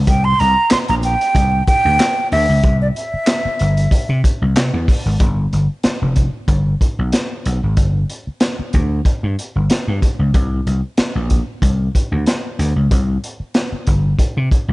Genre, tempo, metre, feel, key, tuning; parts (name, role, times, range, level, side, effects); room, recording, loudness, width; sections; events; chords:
funk; 94 BPM; 4/4; straight; A4 = 440 Hz
vintage slap bass; bass; 0.0-14.7 s; F1 to C3; -16 LUFS; equal
breathy mellow silver concert flute; melody; 0.1-4.2 s; D5 to C6; -16 LUFS; right 1 dB
crunchy breakbeat drum kit; drums; 0.1-14.7 s; handclaps, hi-hat, kick drum, snare drum; -17 LUFS; equal
little or no reverb; dark, warm production, nothing above 10.8 kHz; -14 LUFS; side -20 dB against mid
0.0-5.2 A section; 5.2-14.7 B section
0.1 C; 5.2 N.C.